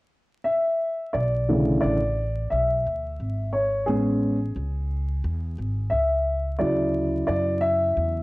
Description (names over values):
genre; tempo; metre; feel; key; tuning
hip hop; 88 BPM; 4/4; swing 60% on 16ths; B dorian; A4 = 440 Hz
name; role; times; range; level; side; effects
dark grand piano; accompaniment; 0.4-8.2 s; C#3 to E5; -22 LUFS; equal; plate reverb
upright bass; bass; 1.1-8.2 s; G#1 to F#2; -27 LUFS; equal; none
room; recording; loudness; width
wet studio reverb, RT60 0.6 s; worn, warbling old tape, cassette tape, vinyl crackle, warbly pitch drift; -22 LUFS; side -21 dB against mid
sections
0.0-1.1 A section; 1.1-8.2 B section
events
grand piano solo 1.1-8.2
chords
0.0 N.C.; 1.1 Bm11; 3.9 Amaj7; 6.6 Dmaj9